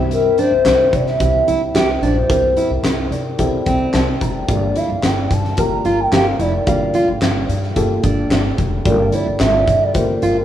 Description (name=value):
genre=piano-driven pop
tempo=110 BPM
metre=4/4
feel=straight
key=unclear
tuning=A4 = 435 Hz
part: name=dark upright piano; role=accompaniment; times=0.0-10.4 s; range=G2 to Bb5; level=-22 LUFS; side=left 1 dB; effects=none
part: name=upright bass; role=bass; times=0.0-10.4 s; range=F1 to C3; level=-22 LUFS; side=equal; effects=none
part: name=hollow clarinet-like synth lead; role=melody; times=0.1-10.4 s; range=Bb4 to Bb5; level=-18 LUFS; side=left 1 dB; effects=chorus, digital delay
part: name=huge arena drum kit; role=drums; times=0.1-10.3 s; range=handclaps, hi-hat, kick drum, snare drum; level=-20 LUFS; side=equal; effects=none
part: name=fingerpicked steel-string acoustic guitar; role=riff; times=0.4-10.4 s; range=C4 to G4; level=-22 LUFS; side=right 2 dB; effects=none
room=moderate lush hall reverb, RT60 2.0 s, studio ambience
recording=rough home demo mix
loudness=-14 LUFS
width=side -11 dB against mid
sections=0.0-10.4 A section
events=upright piano fill 2.8-4.5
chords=0.0 Gm7